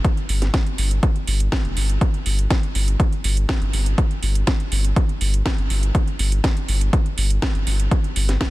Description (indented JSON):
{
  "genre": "progressive house",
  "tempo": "122 BPM",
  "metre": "4/4",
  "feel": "straight",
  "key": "unclear",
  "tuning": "A4 = 440 Hz",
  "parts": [
    { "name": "electronic kick drum", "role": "drums", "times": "0.0-8.5 s", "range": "none", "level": "-19 LUFS", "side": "equal", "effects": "none" },
    { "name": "house drum kit", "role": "drums", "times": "0.0-8.5 s", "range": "hi-hat, snare drum", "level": "-26 LUFS", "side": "right 1 dB", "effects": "none" },
    { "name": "saturated sub bass", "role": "bass", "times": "0.3-8.4 s", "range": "F1 to G1", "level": "-19 LUFS", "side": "equal", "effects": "sidechain pumping" }
  ],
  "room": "little or no reverb",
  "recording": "dense, heavily limited modern master",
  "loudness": "-18 LUFS",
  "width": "side -18 dB against mid",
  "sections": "0.0-8.5 A section",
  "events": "none",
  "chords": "none"
}